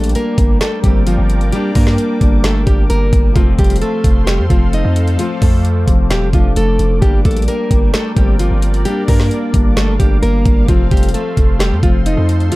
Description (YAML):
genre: hip hop, trap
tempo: 131 BPM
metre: 4/4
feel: half-time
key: G minor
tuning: A4 = 440 Hz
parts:
  - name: nylon-string guitar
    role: melody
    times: 0.0-12.6 s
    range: F3 to Eb5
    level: -19 LUFS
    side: equal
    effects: low-pass filter
  - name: dark concert grand piano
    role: accompaniment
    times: 0.0-12.6 s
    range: F3 to D4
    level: -21 LUFS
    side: left 5 dB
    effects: low-pass filter
  - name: sweeping resonant pad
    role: sustained chords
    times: 0.0-12.6 s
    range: A4 to D6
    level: -28 LUFS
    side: right 1 dB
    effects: chorus
  - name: hard-hitting 808-style bass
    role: bass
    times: 0.0-12.5 s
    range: Eb1 to G2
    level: -15 LUFS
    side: equal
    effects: none
  - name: trap drum kit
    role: drums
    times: 0.0-12.6 s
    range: hi-hat, kick drum, snare drum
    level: -13 LUFS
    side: equal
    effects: none
room: digital ambience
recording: dark, warm production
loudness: -11 LUFS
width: side -19 dB against mid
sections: 0.0-12.6 A section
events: none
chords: 0.0 Gm; 3.4 F; 7.0 Gm; 10.7 F